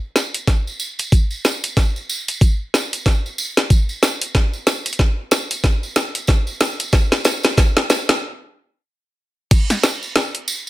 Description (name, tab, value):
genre	glitch hop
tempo	93 BPM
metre	4/4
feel	swing 59% on 16ths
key	none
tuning	none
part	drum and bass drum kit	drums	0.2-10.5 s	crash cymbal, hi-hat, snare drum	-18 LUFS	equal	overdrive, soft clipping on snare
part	tambourine	percussion	0.2-10.7 s	none	-26 LUFS	right 3 dB	none
part	electronic kick drum	drums	0.5-9.7 s	none	-15 LUFS	equal	overdrive
room	light reverb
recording	dense, heavily limited modern master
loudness	-16 LUFS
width	side -16 dB against mid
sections	0.0-9.5 A section; 9.5-10.7 B section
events	build-up 0.0-9.5; drum fill 0.0-8.2; stop 8.2-9.5; drop 9.5-10.7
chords	none